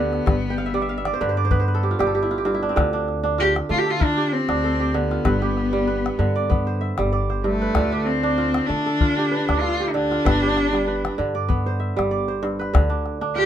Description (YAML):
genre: west african traditional, West African string and xylophone music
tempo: 96 BPM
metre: 4/4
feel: swing 54% on 16ths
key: unclear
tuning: A4 = 441 Hz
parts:
  - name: rich cello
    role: melody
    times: 0.0-13.5 s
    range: A3 to G4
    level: -22 LUFS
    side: left 1 dB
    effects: none
  - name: kora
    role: arpeggios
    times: 0.0-13.5 s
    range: G2 to G5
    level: -23 LUFS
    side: right 3 dB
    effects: none
  - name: upright bass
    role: bass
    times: 0.0-13.5 s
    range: G1 to D3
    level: -26 LUFS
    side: equal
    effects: none
  - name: calabash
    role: percussion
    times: 0.1-13.3 s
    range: none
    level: -23 LUFS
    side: left 3 dB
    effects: none
room: light reverb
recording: minimal, uncompressed stereo recording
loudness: -19 LUFS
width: side -10 dB against mid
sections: 0.0-13.5 A section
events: kora fill 0.5-2.8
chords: 0.3 G; 2.8 Dm; 5.3 G; 7.8 Dm; 10.2 G; 12.7 Dm